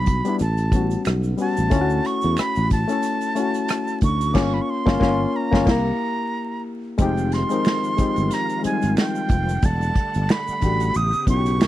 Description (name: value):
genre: R&B, neo-soul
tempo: 91 BPM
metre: 4/4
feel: swing 57% on 16ths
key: unclear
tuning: A4 = 442 Hz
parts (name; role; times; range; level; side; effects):
- breathy bright concert flute; melody; 0.0-11.7 s; G5 to Eb6; -26 LUFS; right 2 dB; none
- barky reed electric piano; accompaniment; 0.0-11.7 s; G3 to Bb4; -23 LUFS; left 4 dB; overdrive
- sustaining fretless electric bass; bass; 0.0-11.7 s; E1 to E2; -22 LUFS; equal; none
- unplugged drum kit; drums; 0.1-11.7 s; crash cymbal, hi-hat, kick drum, rim click, snare drum; -20 LUFS; equal; none
- tube shaker and finger snaps; percussion; 0.3-11.7 s; none; -40 LUFS; right 8 dB; none
- bright tonewheel organ; sustained chords; 7.0-11.7 s; C#3 to F#5; -32 LUFS; right 2 dB; chorus vibrato, fast rotary speaker
room: studio reverb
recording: dry, close 1970s-style studio recording, vinyl crackle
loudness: -19 LUFS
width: side -14 dB against mid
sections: 0.0-7.0 A section; 7.0-11.7 B section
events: band accent 4.4-7.0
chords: 0.4 A13; 1.7 Dmaj9; 4.4 Gm7b5; 5.7 C7; 7.0 Fm9; 9.6 Em11; 10.9 A9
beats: 0.40 1.05 | 1.71 2.37 3.03 3.69 | 4.35 5.01 5.67 6.33 | 6.99 7.65 8.31 8.97 | 9.63 10.29 10.94 11.60